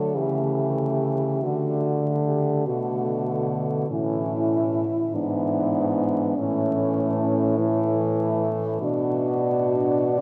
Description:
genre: classical, lyrical piece for horn quartet.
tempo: 49 BPM (dotted quarters).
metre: 6/8.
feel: rubato.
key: unclear.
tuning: A4 = 441 Hz.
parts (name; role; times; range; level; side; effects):
mellow French horn; melody; 0.0-10.2 s; C#4 to A4; -29 LUFS; equal; none.
warm French horn; second line; 0.0-10.2 s; A3 to D4; -32 LUFS; equal; none.
warm French horn; accompaniment; 0.0-10.2 s; D3 to D4; -31 LUFS; equal; none.
clear French horn; bass; 0.0-10.2 s; G#2 to D3; -28 LUFS; equal; none.
room: wet cathedral reverb, RT60 6.1 s.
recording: recorded in a church or concert hall, vinyl crackle.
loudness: -24 LUFS.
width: mono.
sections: 0.0-10.2 A section.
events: none.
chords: 0.2 A7/C#; 1.4 D; 3.9 A; 5.1 E7/G#; 6.4 A; 8.8 Bm.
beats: 0.15 | 1.43 2.68 | 3.90 5.13 | 6.38 7.59 | 8.82 10.19.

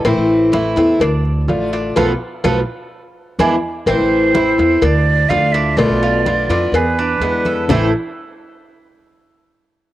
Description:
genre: latin, Cuban son and guajira.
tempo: 126 BPM.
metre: 4/4.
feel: straight.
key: A harmonic minor.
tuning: A4 = 441 Hz.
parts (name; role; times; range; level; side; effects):
picked steel-string acoustic guitar; accompaniment; 0.0-7.9 s; A2 to F4; -17 LUFS; left 2 dB; cassette tape.
Cuban tres; arpeggios; 0.0-7.9 s; A3 to D5; -22 LUFS; right 4 dB; cassette tape.
upright bass; bass; 0.0-7.9 s; A1 to F2; -19 LUFS; right 1 dB; none.
congas; percussion; 0.1-7.8 s; none; -23 LUFS; left 1 dB; none.
cowbell and bongos; percussion; 0.1-7.8 s; none; -21 LUFS; left 3 dB; none.
breathy bright jazz flute; second line; 3.9-7.9 s; B4 to F5; -18 LUFS; right 4 dB; cassette tape.
room: moderate spring reverb, RT60 2.6 s.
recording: home recording on cassette.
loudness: -13 LUFS.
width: side -14 dB against mid.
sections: 0.0-3.9 A section; 3.9-7.7 B section; 7.7-9.6 C section.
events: band accent 2.0-3.9; drum fill 3.2-3.9.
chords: 0.0 Am; 1.0 Dm; 2.0 Asus2/B; 2.9 E7; 3.9 Am; 4.8 Dm; 5.8 Bm7b5; 6.7 E7; 7.7 A5.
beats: | 0.04 0.52 1.00 1.48 | 1.96 2.43 2.91 3.39 | 3.87 4.35 4.82 5.30 | 5.78 6.26 6.74 7.21 | 7.69.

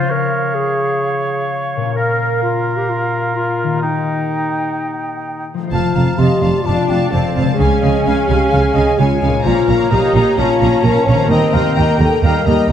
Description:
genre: cinematic.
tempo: 129 BPM.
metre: 4/4.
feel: straight.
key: unclear.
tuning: A4 = 440 Hz.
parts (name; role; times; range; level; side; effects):
hollow concert flute; second line; 0.0-12.7 s; F5 to C6; -24 LUFS; equal; none.
warm clarinet; second line; 0.0-12.7 s; Eb4 to G5; -23 LUFS; equal; none.
warm oboe; second line; 0.0-5.5 s; Eb4 to Db5; -22 LUFS; right 2 dB; none.
concert harp; arpeggios; 0.0-12.7 s; Bb2 to F5; -22 LUFS; left 5 dB; none.
warm symphonic violin section; melody; 5.7-12.7 s; Ab5 to Bb5; -26 LUFS; left 3 dB; none.
warm symphonic violin section; second line; 5.7-12.7 s; Db5 to G5; -25 LUFS; left 2 dB; none.
mellow French horn section; sustained chords; 5.7-12.7 s; Eb4 to Db5; -17 LUFS; left 2 dB; none.
warm symphonic cello section; bass; 5.7-12.7 s; Eb2 to Db3; -18 LUFS; right 2 dB; none.
warm symphonic double bass section; bass; 5.7-12.7 s; F1 to Eb2; -18 LUFS; right 2 dB; none.
warm symphonic viola section; accompaniment; 6.7-12.7 s; G3 to Eb4; -22 LUFS; right 1 dB; none.
room: wet scoring stage reverb, RT60 1.9 s.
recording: none.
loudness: -13 LUFS.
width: side -9 dB against mid.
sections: 0.0-5.7 A section; 5.7-12.7 A section.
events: none.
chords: 0.1 Db; 1.9 Bbm; 3.8 Eb; 5.7 F; 7.6 Db; 9.5 Bbm; 11.3 Eb.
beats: | 0.10 0.56 1.02 1.49 | 1.95 2.42 2.88 3.35 | 3.82 4.30 4.78 5.25 | 5.73 6.20 6.67 7.13 | 7.60 8.06 8.53 8.99 | 9.46 9.92 10.39 10.85 | 11.31 11.78 12.24 12.70.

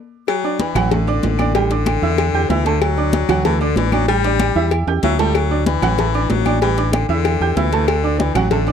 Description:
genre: latin, salsa.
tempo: 190 BPM.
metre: 4/4.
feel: straight.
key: D major.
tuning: A4 = 444 Hz.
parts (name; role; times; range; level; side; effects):
clear baritone saxophone; second line; 0.3-8.7 s; D3 to G3; -22 LUFS; left 15 dB; none.
agogo bells and timbales; percussion; 0.3-8.7 s; none; -26 LUFS; right 8 dB; none.
claves; percussion; 0.3-8.5 s; none; -31 LUFS; left 23 dB; none.
congas; percussion; 0.3-8.7 s; none; -23 LUFS; left 2 dB; none.
cowbell; percussion; 0.3-8.7 s; none; -24 LUFS; left 10 dB; none.
bright upright piano; accompaniment; 0.4-8.7 s; F#3 to G6; -21 LUFS; right 9 dB; none.
fingered electric bass; bass; 0.7-8.7 s; A1 to E2; -19 LUFS; equal; none.
room: light reverb.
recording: dry, close 1970s-style studio recording.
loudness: -15 LUFS.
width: side -8 dB against mid.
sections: 0.3-8.7 A section.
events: drum fill 0.0, 4.9-5.3; band accent 0.0.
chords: 0.3 D; 1.5 A7sus4; 2.8 D; 4.1 A7sus4; 5.3 D; 6.6 A7sus4; 7.9 D.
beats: | 0.28 0.60 0.92 1.23 | 1.55 1.87 2.18 2.50 | 2.82 3.13 3.45 3.77 | 4.08 4.40 4.72 5.03 | 5.35 5.67 5.98 6.30 | 6.62 6.93 7.25 7.57 | 7.88 8.20 8.51.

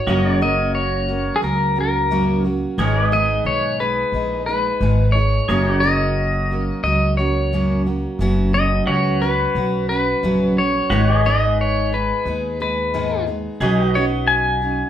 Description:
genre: honky-tonk and classic country.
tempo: 89 BPM.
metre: 4/4.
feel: straight.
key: unclear.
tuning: A4 = 444 Hz.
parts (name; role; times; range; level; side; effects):
pedal steel guitar; melody; 0.0-14.9 s; G#4 to G#5; -20 LUFS; left 2 dB; none.
picked steel-string acoustic guitar; accompaniment; 0.0-14.9 s; F#2 to G#4; -22 LUFS; equal; none.
pedal steel guitar; sustained chords; 0.0-14.9 s; F#4 to D#5; -26 LUFS; right 2 dB; none.
upright bass; bass; 0.1-14.8 s; F#1 to D#2; -22 LUFS; equal; none.
room: wet studio reverb, RT60 0.7 s.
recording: band playing live in one room.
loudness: -16 LUFS.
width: side -10 dB against mid.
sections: 0.0-14.9 A section.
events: none.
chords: 0.1 F#; 2.8 G#m; 5.5 F#; 8.2 F#sus4; 10.9 G#m; 13.6 Badd9.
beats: | 0.07 0.75 1.43 2.10 | 2.78 3.46 4.13 4.81 | 5.49 6.17 6.84 7.52 | 8.20 8.87 9.55 10.23 | 10.90 11.58 12.26 12.93 | 13.61 14.28.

